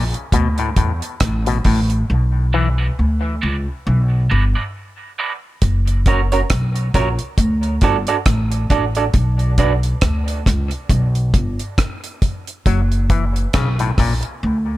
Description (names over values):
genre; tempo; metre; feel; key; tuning
dub reggae; 68 BPM; 4/4; swing 58% on 16ths; B minor; A4 = 441 Hz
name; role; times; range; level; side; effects
overdriven clav; arpeggios; 0.0-2.7, 12.7-14.1 s; A2 to F#3; -24 LUFS; left 5 dB; auto-wah, dub echo
upright bass; bass; 0.0-14.8 s; F#1 to E2; -17 LUFS; equal; none
deep reggae drum kit; drums; 0.1-14.4 s; hi-hat, kick drum, rim click; -18 LUFS; equal; none
electric guitar through a small old amp; accompaniment; 2.5-9.7 s; C#4 to D5; -22 LUFS; right 5 dB; high-pass filter, dub echo
room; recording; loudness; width
small room ambience; none; -15 LUFS; side -16 dB against mid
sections
0.0-14.8 A section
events
break 0.0-2.1; part muted 2.1-5.6; drums muted 14.4-14.8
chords
0.3 D5; 2.1 Bm; 5.6 F#; 7.4 D; 9.1 Bm; 12.7 F#